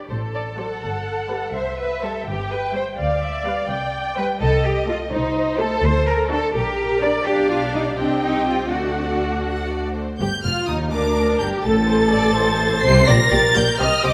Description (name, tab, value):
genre	quick classical-period movement for string orchestra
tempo	83 BPM (dotted quarters)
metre	6/8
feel	straight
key	G minor from 4.4 s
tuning	A4 = 442 Hz
part	clear symphonic violin section	melody	0.0-14.1 s	C5 to C7	-26 LUFS	equal	none
part	dark symphonic violin section	second line	0.0-14.1 s	D4 to G5	-27 LUFS	equal	none
part	clear symphonic viola section	accompaniment	0.0-14.1 s	F#3 to Eb5	-27 LUFS	equal	none
part	clear symphonic double bass section	bass	0.1-14.1 s	F1 to Eb2	-27 LUFS	equal	none
part	rich symphonic cello section	bass	0.1-14.1 s	D2 to D5	-25 LUFS	equal	none
room	wet concert hall reverb, RT60 2.1 s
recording	none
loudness	-20 LUFS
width	mono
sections	0.0-10.2 A section; 10.2-14.1 B section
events	none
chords	0.1 D7/A; 0.8 G; 1.5 C; 3.0 G7/D; 3.7 C; 4.4 Adim/C; 5.8 D; 6.5 Gm/Bb; 7.3 G7/B; 8.0 Cm; 8.7 D; 10.2 Gm; 11.6 Asus4; 12.4 Am; 13.1 Gm/Bb